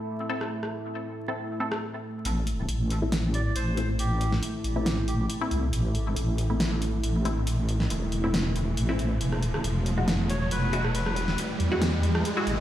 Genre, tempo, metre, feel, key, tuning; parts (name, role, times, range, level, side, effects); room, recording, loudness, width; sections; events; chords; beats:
deep dubstep; 138 BPM; 4/4; swing 53% on 16ths, half-time; A minor; A4 = 440 Hz
deep dark ambient pad; sustained chords; 0.0-12.6 s; A3 to E4; -34 LUFS; equal; chorus, built-in reverb
filtered dub chord stab; stabs; 0.3-12.5 s; G#3 to A4; -34 LUFS; left 1 dB; phaser, dub echo
deep house drum kit; drums; 0.4-12.6 s; hi-hat, rim click, snare drum; -31 LUFS; equal
wobble bass; bass; 2.3-12.6 s; E1 to E2; -26 LUFS; equal; chorus
riser; sound effects; 4.6-12.6 s; -35 LUFS; right 2 dB
melodica; melody; 3.3-5.3, 10.3-11.4 s; G4 to D5; -36 LUFS; left 1 dB; low-pass filter, dub echo
moderate digital room reverb, RT60 1.1 s, digital ambience; played on a big sound system in a bare room, stone room reverb, vinyl crackle; -25 LUFS; side -12 dB against mid
0.0-2.3 A section; 2.3-12.6 B section
filter sweep on synth stab 0.0-2.3, 2.3-12.6; build-up 2.3-12.6; riser 4.6-12.6
0.0 Am; 9.2 Eadd9
0.08 | 0.51 0.95 1.38 1.82 | 2.25 2.69 3.12 3.56 | 3.99 4.43 4.86 5.30 | 5.73 6.17 6.60 7.04 | 7.47 7.91 8.34 8.78 | 9.21 9.64 10.08 10.51 | 10.95 11.38 11.82 12.25